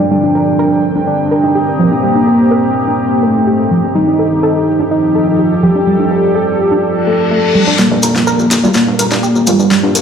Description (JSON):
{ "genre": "melodic techno", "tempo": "125 BPM", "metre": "4/4", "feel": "straight", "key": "G minor", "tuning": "A4 = 443 Hz", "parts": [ { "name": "deep dark ambient pad", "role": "sustained chords", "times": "0.0-10.0 s", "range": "C3 to A4", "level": "-20 LUFS", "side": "right 2 dB", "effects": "chorus, built-in reverb" }, { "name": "tight sequenced synth", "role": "arpeggios", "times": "0.0-10.0 s", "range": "F3 to Bb4", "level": "-17 LUFS", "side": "right 1 dB", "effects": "chorus, cassette tape, dub echo" }, { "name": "bowed-like drone", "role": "drone", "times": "0.0-7.8 s", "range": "G2", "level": "-26 LUFS", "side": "left 2 dB", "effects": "built-in reverb" }, { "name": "deep dark ambient pad", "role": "texture", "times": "0.0-10.0 s", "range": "F3 to Eb6", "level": "-18 LUFS", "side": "equal", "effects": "chorus, built-in reverb" }, { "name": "wide unison lead", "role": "melody", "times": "0.1-10.0 s", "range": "G3 to A4", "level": "-13 LUFS", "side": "equal", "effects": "cassette tape, dub echo" }, { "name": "reverse cymbal", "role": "sound effects", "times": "7.0-7.8 s", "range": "none", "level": "-21 LUFS", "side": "left 5 dB", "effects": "none" }, { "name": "deep house drum kit", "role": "drums", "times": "7.8-10.0 s", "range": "hi-hat, snare drum", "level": "-18 LUFS", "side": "left 1 dB", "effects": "overdrive, high-pass filter on snare, low-pass filter on snare, high-pass filter on hats, low-pass filter on hats" }, { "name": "maracas", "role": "percussion", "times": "7.8-10.0 s", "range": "none", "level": "-21 LUFS", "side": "left 4 dB", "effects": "none" }, { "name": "fat analog bass", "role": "bass", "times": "7.9-10.0 s", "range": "G1", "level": "-20 LUFS", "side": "equal", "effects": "high-pass filter" }, { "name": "synth brass stab", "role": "stabs", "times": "8.6-9.6 s", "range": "G3 to F4", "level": "-17 LUFS", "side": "right 2 dB", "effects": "chorus, dub echo" } ], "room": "moderate huge ambient reverb, RT60 5.2 s", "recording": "played on a big sound system in a bare room, stone room reverb", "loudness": "-10 LUFS", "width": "side -7 dB against mid", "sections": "0.0-7.8 A section; 7.8-10.0 B section", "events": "filter sweep on analog synth lead 0.0-7.8, 7.8-10.0; reverse cymbal 7.0-7.8; build-up 7.8-10.0; drum fill 7.8-10.0; filter sweep on synth arpeggio sound 7.8-10.0", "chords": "0.1 Cmadd9; 4.0 Fadd9; 7.8 Gm7" }